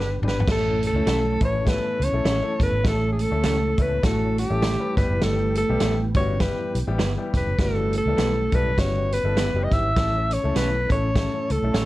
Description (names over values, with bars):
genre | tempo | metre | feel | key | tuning
uptempo 1960s-style soul | 101 BPM | 4/4 | swing 58% on 8ths | A mixolydian | A4 = 440 Hz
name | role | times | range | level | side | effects
breathy alto saxophone | melody | 0.0-11.9 s | G4 to E5 | -25 LUFS | left 1 dB | none
warm upright piano | accompaniment | 0.0-11.8 s | G3 to B4 | -31 LUFS | left 3 dB | none
tonewheel organ | sustained chords | 0.0-11.9 s | D3 to A4 | -36 LUFS | left 1 dB | none
vintage muted fingered electric bass | bass | 0.0-11.9 s | F1 to D2 | -25 LUFS | equal | none
vintage drum kit | drums | 0.0-11.9 s | crash cymbal, hi-hat, kick drum, snare drum, toms | -25 LUFS | equal | none
vibraphone with soft mallets | second line | 0.3-11.9 s | G3 to E4 | -31 LUFS | right 4 dB | none
electric guitar through a small old amp | stabs | 1.1-11.9 s | A3 to C#5 | -30 LUFS | right 5 dB | none
room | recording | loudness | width
light reverb | dark, warm production | -20 LUFS | side -17 dB against mid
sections
0.5-11.9 A section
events
drum fill 0.0-0.5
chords
0.5 A; 4.9 Em; 10.0 A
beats
| 0.48 1.07 1.67 2.26 | 2.85 3.44 4.04 4.63 | 5.22 5.82 6.41 7.00 | 7.59 8.19 8.78 9.38 | 9.97 10.56 11.15 11.75